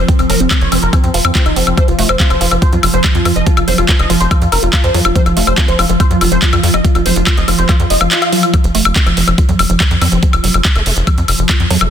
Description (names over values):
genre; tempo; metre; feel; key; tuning
psychedelic trance; 142 BPM; 4/4; straight; F major; A4 = 436 Hz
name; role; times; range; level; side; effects
wide unison lead; melody; 0.0-8.5 s; C4 to F5; -18 LUFS; left 1 dB; phaser, sidechain pumping, ping-pong delay
evolving wavetable pad; sustained chords; 0.0-11.9 s; F3; -21 LUFS; right 1 dB; chorus, built-in reverb, phaser, sidechain pumping
woody wave-folded pluck; riff; 0.0-11.9 s; F3 to F4; -20 LUFS; moving between left 2 dB and right 6 dB; chorus, auto-pan, vintage 12-bit sampler grit, sidechain pumping
tight sequencer bass; bass; 0.0-11.9 s; F1 to F2; -16 LUFS; equal; tube saturation
electronic kick drum; drums; 0.1-11.6 s; none; -12 LUFS; equal; overdrive
garage drum kit; drums; 0.1-11.9 s; handclaps, hi-hat, woodblock; -15 LUFS; left 2 dB; overdrive
swell; sound effects; 7.8-8.5 s; none; -25 LUFS; left 1 dB; none
formant-sweep wobble bass; second line; 10.0-11.9 s; A3 to C4; -29 LUFS; right 1 dB; chorus, sidechain pumping, high-pass filter, ping-pong delay
room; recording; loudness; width
little or no reverb; dense, heavily limited modern master; -9 LUFS; side -9 dB against mid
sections
0.0-11.9 A section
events
filter sweep on synth arpeggio sound 0.0-11.9; swell 7.8-8.5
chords
0.0 F5